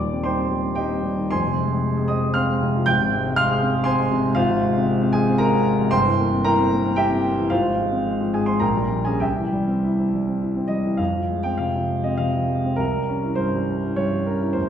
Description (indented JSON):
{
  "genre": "classical, romantic character piece for solo piano",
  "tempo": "97-124 BPM",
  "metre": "3/4",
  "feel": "rubato",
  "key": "F minor from 4.4 s",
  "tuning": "A4 = 440 Hz",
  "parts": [
    { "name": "warm concert grand piano", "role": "solo", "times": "0.0-14.7 s", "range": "Eb1 to G6", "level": "-19 LUFS", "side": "equal", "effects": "none" }
  ],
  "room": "wet scoring stage reverb, RT60 1.6 s",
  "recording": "recorded in a church or concert hall",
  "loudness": "-19 LUFS",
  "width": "side -9 dB against mid",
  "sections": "0.0-11.0 A section; 11.0-14.7 B section",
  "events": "none",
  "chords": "0.0 Cm/Eb; 1.3 Fm; 2.9 Fm/Ab; 5.9 C7/G; 7.5 Fm/Ab; 8.6 Gdim/Bb; 9.2 C; 11.0 Fm; 12.8 C7b9"
}